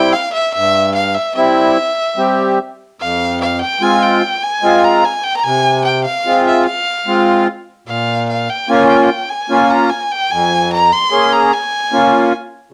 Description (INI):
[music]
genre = klezmer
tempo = 74 BPM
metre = 3/4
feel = straight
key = unclear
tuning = A4 = 440 Hz
[part]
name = clear violin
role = melody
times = 0.0-12.3 s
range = E5 to C6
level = -18 LUFS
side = equal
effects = cassette tape
[part]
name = accordion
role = accompaniment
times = 0.0-12.3 s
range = F2 to Ab4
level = -15 LUFS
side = equal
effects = light tremolo tuning, cassette tape
[sound]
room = moderate studio reverb, RT60 0.6 s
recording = home recording on cassette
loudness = -14 LUFS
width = mono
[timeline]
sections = 0.0-12.7 A section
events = none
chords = 0.0 C; 3.0 Fm; 7.9 Bbm